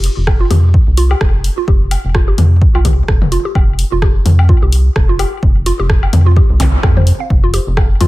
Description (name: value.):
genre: minimal techno.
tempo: 128 BPM.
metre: 4/4.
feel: swing 57% on 16ths.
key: unclear.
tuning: A4 = 440 Hz.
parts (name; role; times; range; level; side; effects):
rubbery square bass; bass; 0.0-8.1 s; F1 to F2; -12 LUFS; equal; sidechain pumping.
punchy analog drum machine; drums; 0.0-8.1 s; hi-hat, rim click; -22 LUFS; equal; none.
electronic kick drum; drums; 0.3-7.9 s; none; -13 LUFS; equal; none.
electronic woodblock and toms; percussion; 0.3-8.1 s; none; -21 LUFS; left 4 dB; ping-pong delay.
mallet-like synth pluck; riff; 0.4-8.1 s; C4 to F5; -21 LUFS; right 1 dB; chorus, sidechain pumping, tape echo.
zap; sound effects; 6.6-6.7 s; none; -23 LUFS; equal; none.
room: little or no reverb.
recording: none.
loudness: -9 LUFS.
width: side -18 dB against mid.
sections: 0.0-8.1 A section.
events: filter sweep on synth arpeggio sound 0.0-8.1.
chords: 0.0 F5.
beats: 0.27 0.74 1.21 | 1.68 2.15 2.62 3.08 | 3.55 4.02 4.49 4.96 | 5.43 5.90 6.37 6.83 | 7.30 7.77.